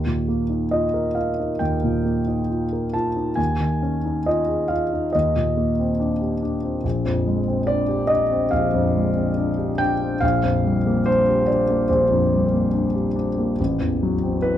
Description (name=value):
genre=classical, impressionist solo piano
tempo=70 BPM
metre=4/4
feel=rubato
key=Eb major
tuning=A4 = 440 Hz
part: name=clear grand piano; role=solo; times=0.0-14.6 s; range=A1 to A5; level=-19 LUFS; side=equal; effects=none
room=light reverb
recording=dark, warm production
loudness=-19 LUFS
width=side -11 dB against mid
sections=0.0-14.6 A section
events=none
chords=0.0 Ebadd9; 3.4 Dbadd9/Eb; 5.1 Cm9/Eb; 6.8 Bb13; 10.2 Gm7/Bb; 13.6 Am6